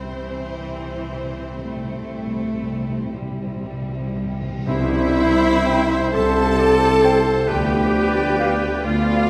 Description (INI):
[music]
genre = classical, slow romantic movement for symphony orchestra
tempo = 37-45 BPM (dotted quarters)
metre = 12/8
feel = rubato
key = C major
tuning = A4 = 440 Hz
[part]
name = rich chamber violin section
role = melody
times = 0.0-9.3 s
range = B4 to C5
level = -39 LUFS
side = equal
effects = none
[part]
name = dark studio violin section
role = second line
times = 0.0-9.3 s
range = G3 to A5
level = -34 LUFS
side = equal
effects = none
[part]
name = rich chamber viola section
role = accompaniment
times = 0.0-9.3 s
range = C4 to A4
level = -23 LUFS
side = equal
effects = none
[part]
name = concert harp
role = arpeggios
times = 0.0-9.3 s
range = C3 to B5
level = -36 LUFS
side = equal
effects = none
[part]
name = clear chamber double bass section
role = bass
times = 0.0-9.3 s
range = C2 to D2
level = -31 LUFS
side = equal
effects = none
[part]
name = clear studio cello section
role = bass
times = 0.0-9.3 s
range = C2 to A3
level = -29 LUFS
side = equal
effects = none
[part]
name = timpani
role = percussion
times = 0.0-6.1 s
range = C3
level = -32 LUFS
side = equal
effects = none
[part]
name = clear oboe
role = second line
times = 4.7-9.3 s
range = B4 to E5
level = -31 LUFS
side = equal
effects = none
[part]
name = hollow large flute ensemble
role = second line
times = 4.7-9.3 s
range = E5 to A5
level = -31 LUFS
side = equal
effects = none
[part]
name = warm French horn section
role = sustained chords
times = 4.7-9.3 s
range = F3 to C4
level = -30 LUFS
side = equal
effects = none
[part]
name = dark trumpet section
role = stabs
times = 4.7-9.3 s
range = C5 to D5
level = -31 LUFS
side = equal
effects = none
[part]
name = mellow tuba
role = bass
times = 4.7-9.3 s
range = C2 to D2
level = -30 LUFS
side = equal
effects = none
[part]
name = tam-tam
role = percussion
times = 4.7-8.4 s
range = none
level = -34 LUFS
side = equal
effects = none
[part]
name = mellow clarinet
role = second line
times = 5.7-8.6 s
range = F5 to G5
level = -32 LUFS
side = equal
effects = none
[part]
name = mellow bassoon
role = accompaniment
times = 5.7-8.6 s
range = B3 to C4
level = -34 LUFS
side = equal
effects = none
[sound]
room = wet scoring stage reverb, RT60 1.9 s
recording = none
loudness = -20 LUFS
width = mono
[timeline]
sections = 0.0-4.7 A section; 4.7-9.3 B section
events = timpani fill 0.0-4.7; band accent 4.7-5.6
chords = 0.0 C; 7.5 Bdim/D